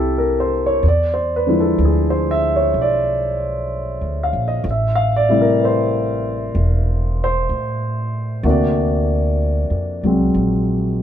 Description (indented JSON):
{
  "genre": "jazz ballad",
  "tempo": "63 BPM",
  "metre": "4/4",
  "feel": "swing 68% on 8ths",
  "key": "unclear",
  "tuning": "A4 = 440 Hz",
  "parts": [
    { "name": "warm concert grand piano", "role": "accompaniment", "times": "0.0-11.0 s", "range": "C3 to F5", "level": "-18 LUFS", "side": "equal", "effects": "none" },
    { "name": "upright bass", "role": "bass", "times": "0.0-11.0 s", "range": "E1 to A2", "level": "-20 LUFS", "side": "equal", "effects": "none" }
  ],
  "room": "light reverb",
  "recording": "band playing live in one room",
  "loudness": "-16 LUFS",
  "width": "side -10 dB against mid",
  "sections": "0.0-11.0 A section",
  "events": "none",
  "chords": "0.0 Fmaj13 (rootless); 0.8 E7b9; 4.6 Am7; 8.4 D7b13",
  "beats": "| 0.83 1.79 2.74 3.69 | 4.64 5.59 6.54 7.49 | 8.44 9.39 10.35"
}